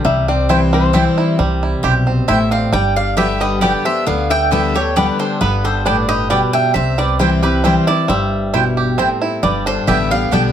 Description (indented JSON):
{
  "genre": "bluegrass",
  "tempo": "134 BPM",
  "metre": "3/4",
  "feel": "straight",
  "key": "C major",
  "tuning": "A4 = 440 Hz",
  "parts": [
    { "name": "lap resonator guitar", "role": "second line", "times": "0.0-10.5 s", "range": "G4 to E5", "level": "-23 LUFS", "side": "left 6 dB", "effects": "none" },
    { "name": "picked steel-string acoustic guitar", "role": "accompaniment", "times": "0.0-10.5 s", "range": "G2 to G4", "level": "-18 LUFS", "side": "left 2 dB", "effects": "none" },
    { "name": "bluegrass banjo", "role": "arpeggios", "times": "0.0-10.5 s", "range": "G3 to G4", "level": "-21 LUFS", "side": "right 4 dB", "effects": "none" },
    { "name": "upright bass", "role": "bass", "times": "0.0-10.5 s", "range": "G1 to D2", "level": "-20 LUFS", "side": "equal", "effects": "none" },
    { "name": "mandolin", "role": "stabs", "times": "0.5-10.4 s", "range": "B3 to G5", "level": "-19 LUFS", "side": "right 2 dB", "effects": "none" },
    { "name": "mandolin", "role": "melody", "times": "2.3-10.5 s", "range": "B4 to G5", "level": "-20 LUFS", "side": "right 2 dB", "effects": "none" }
  ],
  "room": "moderate studio ambience, RT60 0.5 s",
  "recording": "none",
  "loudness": "-13 LUFS",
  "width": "side -9 dB against mid",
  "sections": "0.0-1.4 A section; 1.4-10.5 B section",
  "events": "resonator guitar played with a steel bar solo 0.0-1.4",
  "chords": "0.0 C; 2.7 G; 6.7 C; 9.4 G",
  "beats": "| 0.05 0.49 0.94 | 1.39 1.83 2.28 | 2.73 3.17 3.62 | 4.07 4.51 4.96 | 5.41 5.86 6.30 | 6.75 7.20 7.64 | 8.09 8.54 8.98 | 9.43 9.88 10.32"
}